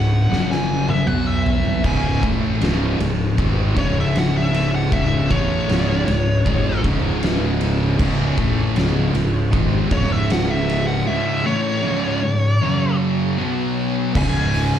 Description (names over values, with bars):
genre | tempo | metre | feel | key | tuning
stoner and doom metal | 78 BPM | 4/4 | straight | C# minor | A4 = 442 Hz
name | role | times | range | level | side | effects
fuzz lead guitar | melody | 0.0-14.8 s | C#5 to G#5 | -25 LUFS | equal | wah, distortion, slapback echo, digital delay
string machine, violins | sustained chords | 0.0-14.8 s | F#3 to E5 | -34 LUFS | right 1 dB | none
thick fuzz guitar | riff | 0.0-14.8 s | C#2 to B3 | -23 LUFS | left 5 dB | distortion
thick fuzz guitar | riff | 0.0-14.8 s | C#2 to B3 | -25 LUFS | right 7 dB | distortion
fuzz fingered electric bass | bass | 0.0-14.7 s | C#1 to B1 | -23 LUFS | equal | overdrive
oversized low-tuned drum kit | drums | 0.3-14.7 s | crash cymbal, hi-hat, kick drum, ride cymbal, snare drum, toms | -23 LUFS | equal | none
sludgy distorted guitar | riff | 1.8-14.8 s | C#2 to B3 | -27 LUFS | right 1 dB | overdrive, slapback echo
room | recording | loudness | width
studio reverb | live gig heard through the venue's PA, club reverb | -17 LUFS | side -10 dB against mid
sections
0.0-14.2 A section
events
lead electric guitar solo 0.0-14.2; drum fill 0.3-1.8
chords
0.3 F#5; 1.1 B5; 1.8 C#m; 12.6 F#5; 13.4 B5; 14.2 C#m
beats
0.30 1.07 | 1.84 2.61 3.38 4.15 | 4.92 5.69 6.46 7.23 | 8.00 8.77 9.54 10.31 | 11.07 11.85 12.61 13.38 | 14.15